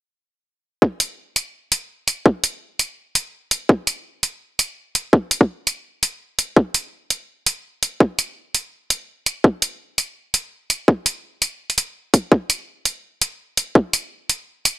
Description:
half-time drum and bass; 167 BPM; 4/4; swing 55% on 16ths, half-time
electronic kick drum; drums; 0.8-13.8 s; -12 LUFS; equal; high-pass filter on kick
electronic hi-hat; drums; 1.0-14.7 s; -18 LUFS; right 1 dB; overdrive
little or no reverb; dark, warm production; -19 LUFS; side -16 dB against mid
0.8-14.8 A section

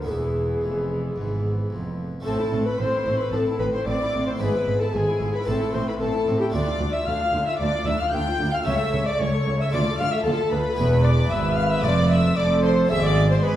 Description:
classical, baroque-style concerto movement with solo episodes; 113 BPM; 4/4; straight; A minor; A4 = 440 Hz
mellow hollow alto recorder; melody; 0.0-13.6 s; G4 to G5; -26 LUFS; left 1 dB
warm chamber violin section; melody; 0.0-13.6 s; E4 to G6; -32 LUFS; left 2 dB
warm chamber violin section; second line; 0.0-13.6 s; B3 to G5; -30 LUFS; left 2 dB
dark chamber viola section; accompaniment; 0.0-13.6 s; E3 to C#5; -30 LUFS; left 2 dB
harpsichord; accompaniment; 0.0-13.6 s; C#2 to A4; -32 LUFS; equal
rich chamber cello section; bass; 0.0-13.6 s; C#2 to G#3; -27 LUFS; right 1 dB
rich chamber double bass section; bass; 0.0-13.6 s; E1 to G#2; -26 LUFS; right 2 dB
wet recital hall reverb, RT60 1.5 s; heard from further back in the room; -20 LUFS; side -12 dB against mid
0.0-2.3 A section; 2.3-13.6 B section
0.1 E; 2.3 Am; 4.4 E/G#; 5.5 Am; 6.5 Dm; 8.7 A/C#; 9.7 Dm; 10.8 E; 11.8 F; 12.9 E/G#

